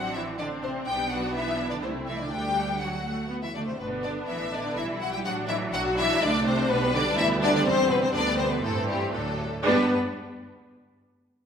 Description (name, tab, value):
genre	quick classical-period movement for string orchestra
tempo	123 BPM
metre	3/4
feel	straight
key	G major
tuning	A4 = 445 Hz
part	rich studio violin section	melody	0.0-9.9 s	G4 to G5	-28 LUFS	left 4 dB	none
part	rich studio violin section	second line	0.0-9.9 s	G3 to G4	-31 LUFS	left 2 dB	none
part	rich studio viola section	accompaniment	0.0-9.9 s	E3 to E4	-30 LUFS	right 2 dB	none
part	rich studio cello section	bass	0.0-9.9 s	G2 to B3	-32 LUFS	right 2 dB	none
part	rich studio double bass section	bass	0.0-9.9 s	G1 to G2	-35 LUFS	right 2 dB	none
room	wet recital hall reverb, RT60 1.6 s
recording	recorded in a church or concert hall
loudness	-24 LUFS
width	side -7 dB against mid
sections	0.0-9.6 A section; 9.6-11.2 B section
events	slowing down 6.0-9.6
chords	0.0 D7/A; 0.9 G/B; 1.8 Am/C; 2.3 D; 3.8 G; 5.2 D7/A; 6.7 G/B; 7.6 C/E; 8.1 D7sus4; 9.1 D; 9.6 G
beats	0.39 | 0.87 1.34 1.83 | 2.32 2.81 3.31 | 3.80 4.29 4.77 | 5.25 5.73 6.21 | 6.69 7.16 7.64 | 8.13 8.62 9.13 | 9.65